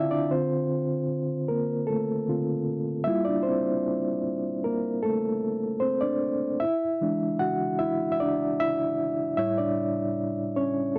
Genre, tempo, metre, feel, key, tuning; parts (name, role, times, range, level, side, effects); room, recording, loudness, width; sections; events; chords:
soul; 76 BPM; 4/4; straight; D minor; A4 = 440 Hz
reed electric piano; solo; 0.0-11.0 s; A2 to A5; -27 LUFS; equal; overdrive, fast tremolo
light reverb; dry, close 1970s-style studio recording; -27 LUFS; mono
0.3-11.0 A section
reed electric piano fill 0.0-0.3; reed electric piano solo 0.3-11.0
0.3 Dm7; 3.1 Gm9; 6.6 E7; 9.4 A7